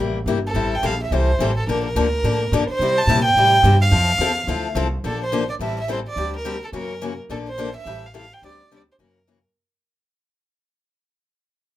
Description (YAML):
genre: acoustic string swing (jazz manouche)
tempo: 214 BPM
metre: 4/4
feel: swing 57% on 8ths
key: unclear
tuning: A4 = 440 Hz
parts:
  - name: picked steel-string acoustic guitar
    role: accompaniment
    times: 0.0-9.4 s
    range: C3 to A4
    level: -25 LUFS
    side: left 5 dB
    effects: none
  - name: upright bass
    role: bass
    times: 0.0-9.4 s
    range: G1 to C3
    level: -22 LUFS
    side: right 1 dB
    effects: none
  - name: warm violin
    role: melody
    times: 0.5-9.4 s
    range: A4 to A5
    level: -21 LUFS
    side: right 1 dB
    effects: none
room: moderate club reverb, RT60 0.7 s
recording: minimal, uncompressed stereo recording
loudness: -17 LUFS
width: side -14 dB against mid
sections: 0.0-5.0 A section; 5.0-9.6 B section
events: fade-out 5.0-9.6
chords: 0.0 C7; 0.6 Am7; 1.7 Bbmaj7; 2.8 C; 3.9 Fmaj7; 5.0 Bbmaj9; 5.6 Am7; 6.2 D7sus4; 6.7 Gb7; 7.3 Bbmaj9; 7.9 Am7; 8.4 D7sus4; 9.0 Gb7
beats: 0.27 | 0.55 0.83 1.11 1.39 | 1.68 1.96 2.23 2.52 | 2.80 3.08 3.36 3.64 | 3.92 4.20 4.48 4.76 | 5.04 5.32 5.60 5.88 | 6.17 6.45 6.73 7.01 | 7.29 7.58 7.86 8.14 | 8.42 8.71 8.99 9.27